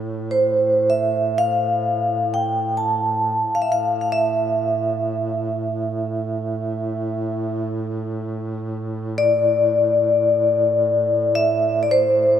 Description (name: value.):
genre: caucasian folk, Caucasian lament.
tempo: free time.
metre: none.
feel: none.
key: A minor.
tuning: A4 = 440 Hz.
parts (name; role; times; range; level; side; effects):
mellow duduk; drone; 0.0-12.4 s; A2; -26 LUFS; right 2 dB; none.
vibraphone with medium mallets; melody; 0.3-12.4 s; C5 to A5; -18 LUFS; left 1 dB; none.
room: wet cathedral reverb, RT60 5.0 s.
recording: none.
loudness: -18 LUFS.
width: side -9 dB against mid.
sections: 0.0-12.4 A section.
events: slowing down 10.7-12.4.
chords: none.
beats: free time.